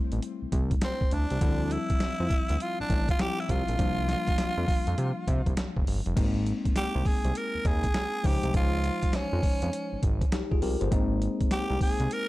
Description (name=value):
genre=R&B, new jack swing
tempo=101 BPM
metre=4/4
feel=swing 64% on 16ths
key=unclear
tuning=A4 = 440 Hz
part: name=bell-like tine electric piano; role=accompaniment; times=0.0-12.3 s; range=F3 to C5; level=-33 LUFS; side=left 4 dB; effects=none
part: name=fat analog bass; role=bass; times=0.1-12.1 s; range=F1 to C3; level=-28 LUFS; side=equal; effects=none
part: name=boom bap sampler-style drum kit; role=drums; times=0.1-12.3 s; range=crash cymbal, hi-hat, kick drum, snare drum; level=-28 LUFS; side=equal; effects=none
part: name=growling tenor saxophone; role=melody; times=0.8-12.3 s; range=C4 to Bb4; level=-32 LUFS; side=right 1 dB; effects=none
room=digital ambience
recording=none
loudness=-25 LUFS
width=side -18 dB against mid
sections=0.0-6.2 A section; 6.2-12.3 B section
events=none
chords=0.0 Fmaj7 (rootless); 1.4 Dm11; 3.8 C7sus4; 6.2 Ab; 8.2 Dbmaj7; 10.9 Ab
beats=0.23 0.82 | 1.41 2.01 2.60 3.20 | 3.79 4.38 4.98 5.57 | 6.17 6.76 7.35 7.95 | 8.54 9.14 9.73 10.32 | 10.92 11.51 12.11